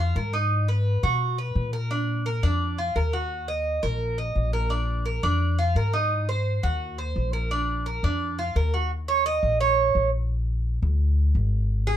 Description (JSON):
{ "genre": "latin, Cuban son and guajira", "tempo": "171 BPM", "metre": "4/4", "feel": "straight", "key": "unclear", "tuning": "A4 = 436 Hz", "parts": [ { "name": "Cuban tres", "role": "arpeggios", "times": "0.0-12.0 s", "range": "D4 to Eb5", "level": "-26 LUFS", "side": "right 3 dB", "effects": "none" }, { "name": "upright bass", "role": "bass", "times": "0.0-12.0 s", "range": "Ab1 to Cb3", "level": "-24 LUFS", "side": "left 1 dB", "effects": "none" } ], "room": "little or no reverb", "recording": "dark, warm production", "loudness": "-22 LUFS", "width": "side -11 dB against mid", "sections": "0.0-8.9 A section; 8.9-12.0 B section", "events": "Cuban tres solo 8.9-12.0", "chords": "0.0 Bb5; 0.5 Abm7; 1.9 Bb; 3.3 Eb5; 4.7 Bb; 6.1 Ab7; 7.5 Bb; 8.9 Eb5; 10.3 Bb", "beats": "0.16 | 0.51 0.86 1.21 1.56 | 1.91 2.26 2.61 2.96 | 3.31 3.66 4.01 4.36 | 4.71 5.06 5.41 5.76 | 6.11 6.46 6.81 7.16 | 7.51 7.86 8.21 8.56 | 8.91 9.26 9.61 9.96 | 10.30 10.65 11.00 11.35 | 11.70" }